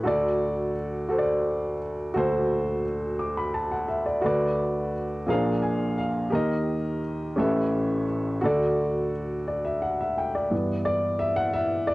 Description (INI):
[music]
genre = gospel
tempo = 57 BPM (dotted quarters)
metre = 6/8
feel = straight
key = unclear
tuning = A4 = 440 Hz
[part]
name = dark upright piano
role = solo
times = 0.0-11.9 s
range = A1 to D6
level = -24 LUFS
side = equal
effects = none
[sound]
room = moderate spring reverb, RT60 1.2 s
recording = home recording on cassette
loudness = -24 LUFS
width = side -20 dB against mid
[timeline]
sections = 0.0-10.5 A section; 10.5-11.9 B section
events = upright piano fill 5.3-6.3, 9.5-10.5; upright piano solo 10.5-11.9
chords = 0.1 D; 4.2 Bm/D; 5.3 Bb7; 6.3 Eb; 7.4 A9; 8.4 D; 10.5 G6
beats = | 0.06 1.10 | 2.15 3.19 | 4.24 5.28 | 6.33 7.37 | 8.42 9.47 | 10.52 11.56